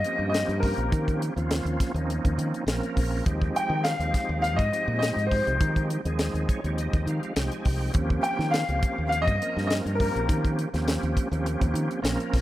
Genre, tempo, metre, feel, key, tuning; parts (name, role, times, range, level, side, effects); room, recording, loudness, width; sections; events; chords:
electric jazz fusion; 103 BPM; 4/4; straight; Eb mixolydian; A4 = 440 Hz
clear concert grand piano; melody; 0.0-10.5 s; Bb4 to G5; -29 LUFS; left 1 dB
breathy bright jazz flute; second line; 0.0-10.5 s; Bb4 to G5; -32 LUFS; left 2 dB
bright tonewheel organ; accompaniment; 0.0-12.4 s; F3 to Ab5; -30 LUFS; right 2 dB; chorus vibrato, fast rotary speaker
tight funk drum kit; drums; 0.0-12.4 s; hi-hat, kick drum, snare drum; -27 LUFS; equal
modern bright fingered electric bass; bass; 0.2-12.4 s; Bb1 to Eb3; -28 LUFS; equal
light reverb; -23 LUFS; side -15 dB against mid
0.0-12.4 A section
tonewheel organ fill 6.2-7.9
0.0 Eb13; 3.3 Fm9; 7.9 Eb13